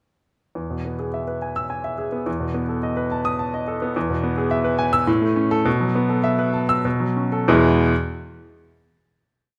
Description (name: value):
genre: classical, virtuoso piano study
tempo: 93-109 BPM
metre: 3/4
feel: rubato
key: E major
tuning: A4 = 440 Hz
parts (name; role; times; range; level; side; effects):
- clear grand piano; solo; 0.6-7.9 s; E2 to E6; -22 LUFS; equal; none
room: moderate recital hall reverb, RT60 1.3 s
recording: none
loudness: -22 LUFS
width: mono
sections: 0.6-7.5 A section; 7.5-9.3 final chord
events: none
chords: 0.6 E; 2.3 B7/E; 4.0 E; 5.1 A; 5.7 B7sus4; 6.8 Bsus2; 7.5 E